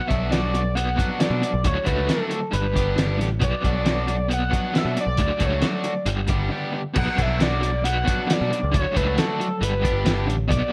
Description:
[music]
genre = indie rock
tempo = 136 BPM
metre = 4/4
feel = straight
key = B minor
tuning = A4 = 440 Hz
[part]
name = overdriven synth lead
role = melody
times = 0.0-10.7 s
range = A4 to F#5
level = -29 LUFS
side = equal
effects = distortion, slapback echo
[part]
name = crunchy overdriven guitar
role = riff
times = 0.0-10.7 s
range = G2 to B3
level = -30 LUFS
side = equal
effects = tremolo
[part]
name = crunchy overdriven guitar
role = riff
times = 0.1-10.3 s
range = F#3 to G4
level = -31 LUFS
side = equal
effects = lush chorus, slapback echo
[part]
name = picked electric bass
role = bass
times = 0.1-10.6 s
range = G1 to B2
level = -27 LUFS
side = equal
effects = none
[part]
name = cloth-damped thuddy drum kit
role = drums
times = 0.1-10.6 s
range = crash cymbal, hi-hat, kick drum, snare drum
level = -27 LUFS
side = equal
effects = none
[sound]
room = light reverb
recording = dark, warm production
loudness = -22 LUFS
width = mono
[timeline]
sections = 0.0-7.0 A section; 7.0-10.7 A section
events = break 6.5-7.0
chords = 0.0 Bm; 1.7 Dmaj7; 2.5 G; 3.4 Bm; 5.2 Dmaj7; 6.1 G; 7.0 Bm; 8.7 Dmaj7; 9.6 G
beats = 0.32 0.77 1.21 | 1.65 2.09 2.54 2.98 | 3.42 3.86 4.31 4.75 | 5.19 5.63 6.08 6.52 | 6.96 7.40 7.85 8.29 | 8.73 9.17 9.61 10.05 | 10.50

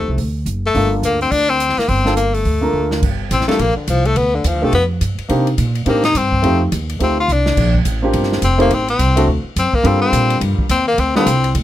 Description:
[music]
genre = jazz, small-group swing and bop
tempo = 211 BPM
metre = 4/4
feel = swing 61% on 8ths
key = G minor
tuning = A4 = 440 Hz
[part]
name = bright tenor saxophone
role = melody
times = 0.0-11.5 s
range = D3 to F4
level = -17 LUFS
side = left 3 dB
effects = none
[part]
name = warm grand piano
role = accompaniment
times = 0.0-11.3 s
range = G3 to C5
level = -19 LUFS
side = equal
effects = none
[part]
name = upright bass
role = bass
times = 0.0-11.6 s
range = F1 to C3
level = -18 LUFS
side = right 1 dB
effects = none
[part]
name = open jazz drum kit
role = drums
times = 0.2-11.6 s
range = crash cymbal, hi-hat, kick drum, ride cymbal, snare drum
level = -24 LUFS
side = equal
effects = none
[sound]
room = little or no reverb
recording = close, detailed microphones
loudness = -14 LUFS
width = side -13 dB against mid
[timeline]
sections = 0.0-3.0 A section; 3.0-11.6 B section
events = drum fill 2.7, 7.3; tenor saxophone solo 3.0-11.6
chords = 0.2 D; 0.7 Gm7; 3.0 Gm; 4.2 G7; 5.3 Cm7; 6.4 F7; 7.6 Bb6; 8.7 Amadd11; 9.3 D; 9.8 Gm7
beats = 0.18 0.46 | 0.74 1.03 1.31 1.60 | 1.88 2.17 2.45 2.74 | 3.02 3.31 3.59 3.87 | 4.16 4.44 4.73 5.01 | 5.29 5.58 5.86 6.15 | 6.43 6.72 7.00 7.28 | 7.57 7.85 8.14 8.42 | 8.71 8.99 9.27 9.56 | 9.84 10.12 10.41 10.69 | 10.98 11.26 11.54

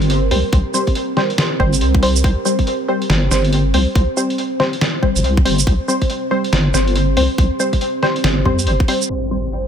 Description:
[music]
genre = deep dubstep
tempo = 140 BPM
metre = 4/4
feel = swing 62% on 16ths, half-time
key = unclear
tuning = A4 = 442 Hz
[part]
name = deep dark ambient pad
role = sustained chords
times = 0.0-9.7 s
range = C4 to C5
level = -23 LUFS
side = right 2 dB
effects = chorus, built-in reverb
[part]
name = filtered dub chord stab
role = stabs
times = 0.0-9.5 s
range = G3 to C5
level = -20 LUFS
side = left 1 dB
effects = chorus, dub echo
[part]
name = deep soft wobble bass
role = bass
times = 0.0-8.8 s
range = G1 to F2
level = -16 LUFS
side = equal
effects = chorus, tube saturation
[part]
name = trip hop sampler-style drum kit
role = drums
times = 0.0-9.6 s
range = hi-hat, shaker, snare drum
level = -21 LUFS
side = right 1 dB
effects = none
[part]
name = electronic kick drum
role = drums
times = 0.5-8.9 s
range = none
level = -16 LUFS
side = equal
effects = overdrive
[part]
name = impact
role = sound effects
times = 9.1-9.7 s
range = none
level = -23 LUFS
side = equal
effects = none
[sound]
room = little or no reverb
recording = low-pass filter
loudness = -14 LUFS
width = side -8 dB against mid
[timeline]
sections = 0.0-9.1 A section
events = impact 9.1-9.7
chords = 0.0 C5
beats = 0.10 | 0.53 0.96 1.38 1.81 | 2.24 2.67 3.10 3.53 | 3.96 4.38 4.81 5.24 | 5.67 6.10 6.53 6.96 | 7.38 7.81 8.24 8.67 | 9.10 9.53

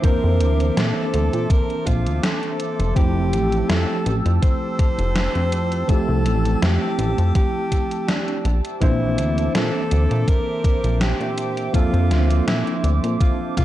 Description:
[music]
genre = vaporwave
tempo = 82 BPM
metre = 4/4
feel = swing 54% on 16ths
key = unclear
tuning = A4 = 438 Hz
[part]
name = warm alto saxophone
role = melody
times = 0.0-13.6 s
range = D4 to C5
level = -26 LUFS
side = equal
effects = tape echo
[part]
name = bright tine electric piano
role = accompaniment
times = 0.0-13.6 s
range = E3 to C5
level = -25 LUFS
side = equal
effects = fast stereo tremolo, analog chorus, vintage 12-bit sampler grit
[part]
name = warbly tape-like pad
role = sustained chords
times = 0.0-13.6 s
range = G4 to E6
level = -31 LUFS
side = right 2 dB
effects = chorus, built-in reverb, phaser, vintage 12-bit sampler grit
[part]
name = chorused synth bass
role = bass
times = 0.0-13.2 s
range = F1 to Bb2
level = -20 LUFS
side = equal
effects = none
[part]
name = electronic kick drum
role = drums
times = 0.0-13.6 s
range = none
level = -18 LUFS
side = equal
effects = overdrive, vintage 12-bit sampler grit
[part]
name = gated 80s digital drum machine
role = drums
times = 0.0-13.6 s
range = hi-hat, snare drum, toms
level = -25 LUFS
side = equal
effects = gated reverb, gated reverb snare, overdrive, vintage 12-bit sampler grit
[sound]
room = little or no reverb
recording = dry, gritty hardware recording, cassette tape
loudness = -17 LUFS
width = side -14 dB against mid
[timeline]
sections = 0.0-13.6 A section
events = none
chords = 0.0 Bbmaj9#11; 3.0 Fmaj9; 8.4 Bbmaj9#11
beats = | 0.04 0.77 1.50 2.23 | 2.96 3.69 4.43 5.16 | 5.89 6.62 7.35 8.08 | 8.82 9.55 10.28 11.01 | 11.74 12.47 13.21

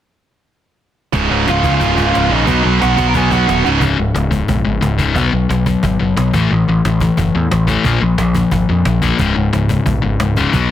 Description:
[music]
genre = punk rock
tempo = 179 BPM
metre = 4/4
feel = straight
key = unclear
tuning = A4 = 440 Hz
[part]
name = sludgy distorted guitar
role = riff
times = 1.1-10.7 s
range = Db2 to Cb4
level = -15 LUFS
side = left 4 dB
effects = overdrive
[part]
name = tight distorted guitar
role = riff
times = 1.1-3.8 s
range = Db2 to Cb4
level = -18 LUFS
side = right 15 dB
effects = distortion
[part]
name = growling picked electric bass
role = bass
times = 1.1-10.7 s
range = Db1 to F2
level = -17 LUFS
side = right 1 dB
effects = overdrive
[part]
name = cajon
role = drums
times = 1.1-10.6 s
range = none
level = -22 LUFS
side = right 1 dB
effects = none
[part]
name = bluesy overdriven lead guitar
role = melody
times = 1.5-3.6 s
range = Eb4 to Bb5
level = -19 LUFS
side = right 2 dB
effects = distortion, tape echo
[sound]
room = little or no reverb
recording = dense, heavily limited modern master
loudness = -12 LUFS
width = side -11 dB against mid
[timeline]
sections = 1.1-3.8 A section; 3.8-10.7 B section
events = drum fill 3.6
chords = 1.1 Db; 2.5 Cb; 3.6 Db5; 5.2 Cb5; 6.3 A5; 7.8 Bb5; 9.2 Db5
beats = | 1.12 1.46 1.80 2.14 | 2.47 2.81 3.15 3.48 | 3.82 4.15 4.49 4.83 | 5.16 5.50 5.83 6.17 | 6.50 6.84 7.17 7.51 | 7.84 8.18 8.52 8.85 | 9.19 9.52 9.86 10.20 | 10.53

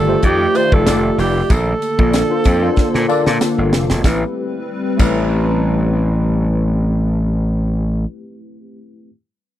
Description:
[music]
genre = polished 1980s jazz-funk pop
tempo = 94 BPM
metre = 4/4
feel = swing 54% on 16ths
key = unclear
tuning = A4 = 441 Hz
[part]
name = warm alto saxophone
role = melody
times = 0.0-3.4 s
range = G4 to C5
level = -18 LUFS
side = right 3 dB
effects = none
[part]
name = tine electric piano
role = accompaniment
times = 0.0-9.1 s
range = G3 to D5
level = -21 LUFS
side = left 3 dB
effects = ensemble chorus
[part]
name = hollow soft pad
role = sustained chords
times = 0.0-7.4 s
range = D3 to D5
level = -24 LUFS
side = equal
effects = chorus
[part]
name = gritty slap bass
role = bass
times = 0.0-8.0 s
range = E1 to Bb2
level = -17 LUFS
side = equal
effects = overdrive
[part]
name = crisp fusion drum kit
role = drums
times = 0.2-5.2 s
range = crash cymbal, hi-hat, kick drum, snare drum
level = -16 LUFS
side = equal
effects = none
[part]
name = tambourine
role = percussion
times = 0.5-5.2 s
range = none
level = -35 LUFS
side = left 18 dB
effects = none
[sound]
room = little or no reverb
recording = dry, close 1970s-style studio recording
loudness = -14 LUFS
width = side -12 dB against mid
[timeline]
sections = 0.0-4.0 A section; 4.0-6.6 B section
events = drum fill 2.8-4.0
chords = 0.0 F13; 1.5 Bbmaj7; 4.0 Am9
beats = 0.23 0.86 | 1.50 2.13 2.77 3.41 | 4.04 4.68 5.31 5.95

